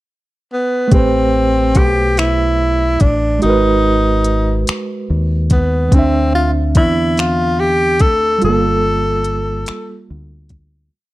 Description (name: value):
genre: slow six-eight R&B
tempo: 48 BPM (dotted quarters)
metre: 6/8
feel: straight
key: unclear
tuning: A4 = 444 Hz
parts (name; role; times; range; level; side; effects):
- breathy tenor saxophone; melody; 0.5-10.1 s; B3 to A4; -16 LUFS; equal; slapback echo
- reed electric piano; accompaniment; 0.9-10.9 s; D3 to E5; -19 LUFS; right 3 dB; fast tremolo
- deep dub fingered electric bass; bass; 0.9-10.9 s; G1 to E2; -18 LUFS; equal; none
- smooth R&B drum kit; drums; 0.9-10.7 s; finger snaps, hi-hat, kick drum; -13 LUFS; equal; none
room: little or no reverb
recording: dry, close 1970s-style studio recording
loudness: -12 LUFS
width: side -17 dB against mid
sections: 0.0-0.9 pickup bar; 0.9-10.9 verse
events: fade-out 8.4-10.9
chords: 0.0 N.C.; 0.9 Am9; 3.4 G#m9; 5.9 Dsus2; 8.4 Gm9